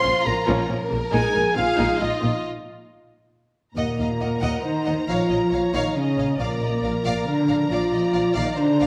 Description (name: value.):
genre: cinematic.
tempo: 137 BPM.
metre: 3/4.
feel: straight.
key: unclear.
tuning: A4 = 440 Hz.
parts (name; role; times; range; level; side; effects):
warm symphonic violin section; melody; 0.0-8.9 s; Eb5 to C6; -34 LUFS; equal; none.
warm studio violin section; second line; 0.0-8.9 s; F4 to Gb5; -32 LUFS; equal; none.
rich symphonic viola section; accompaniment; 0.0-8.9 s; Db3 to Eb5; -34 LUFS; equal; none.
mellow French horn section; sustained chords; 0.0-8.9 s; Bb3 to C5; -26 LUFS; equal; none.
mellow trumpet; stabs; 0.0-2.5 s; Eb5 to C6; -28 LUFS; equal; none.
dark symphonic cello section; bass; 0.0-8.9 s; Bb2 to F3; -30 LUFS; equal; none.
warm symphonic double bass section; bass; 0.1-8.9 s; Bb1 to Eb2; -32 LUFS; equal; none.
room: wet recital hall reverb, RT60 1.4 s.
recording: none.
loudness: -22 LUFS.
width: mono.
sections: 0.0-3.8 A section; 3.8-8.9 B section.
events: break 2.5-3.8.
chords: 0.0 Bbm; 1.1 Absus2/Bb; 3.8 Ebm; 5.1 Bbm; 6.4 Bb.